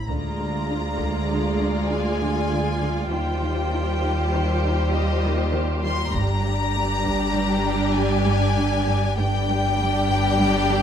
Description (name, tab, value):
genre	cinematic, suspense film score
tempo	99 BPM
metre	5/4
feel	straight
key	unclear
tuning	A4 = 440 Hz
part	rich studio violin section	melody	0.0-10.8 s	Eb5 to C6	-27 LUFS	left 3 dB	none
part	sub bass with octave	drone	0.0-10.8 s	G1 to Eb2	-28 LUFS	equal	none
part	clear studio violin section	second line	0.1-10.8 s	F4 to D5	-29 LUFS	left 5 dB	none
part	rich studio viola section	accompaniment	0.1-10.8 s	G3 to F4	-26 LUFS	right 2 dB	none
part	rich studio cello section	riff	0.1-10.8 s	G2 to Eb4	-29 LUFS	right 1 dB	none
part	rich studio cello section	bass	0.1-10.8 s	D2 to G2	-28 LUFS	right 2 dB	none
part	rich studio double bass section	bass	0.1-10.8 s	G1 to Eb2	-31 LUFS	right 3 dB	none
part	taiko ensemble	drums	0.1-1.3, 6.1-7.3 s	none	-34 LUFS	equal	none
room	moderate scoring stage reverb, RT60 1.8 s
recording	none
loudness	-20 LUFS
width	side -8 dB against mid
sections	0.1-10.8 A section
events	none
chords	0.1 Ddim; 3.1 Cm/Eb; 6.1 Gm